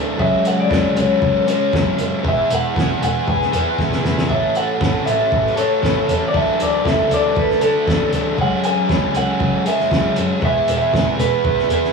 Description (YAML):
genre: indie rock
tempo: 117 BPM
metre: 4/4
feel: straight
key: unclear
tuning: A4 = 439 Hz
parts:
  - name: fuzz guitar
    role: riff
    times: 0.0-11.9 s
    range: E3 to A4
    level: -19 LUFS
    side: left 1 dB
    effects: distortion
  - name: electric guitar through a small old amp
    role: melody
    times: 0.2-11.9 s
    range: A4 to G#5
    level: -19 LUFS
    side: equal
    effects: none
  - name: warm double bass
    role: bass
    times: 0.2-11.8 s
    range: E1 to D3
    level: -25 LUFS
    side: right 1 dB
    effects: none
  - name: cloth-damped thuddy drum kit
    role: drums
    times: 0.2-11.9 s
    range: hi-hat, kick drum, snare drum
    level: -22 LUFS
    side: equal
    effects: none
room: wet booth ambience, RT60 0.2 s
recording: rough rehearsal-room recording, warm saturation, studio reverb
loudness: -15 LUFS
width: side -4 dB against mid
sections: 0.0-11.9 A section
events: drum fill 3.8-4.3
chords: 0.2 C#sus4; 2.2 Eadd9; 4.3 A; 6.3 Dsus2; 8.4 C#sus4; 10.4 E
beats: | 0.20 0.71 1.22 1.73 | 2.25 2.76 3.27 3.78 | 4.29 4.80 5.32 5.83 | 6.34 6.85 7.36 7.87 | 8.38 8.89 9.40 9.91 | 10.42 10.93 11.44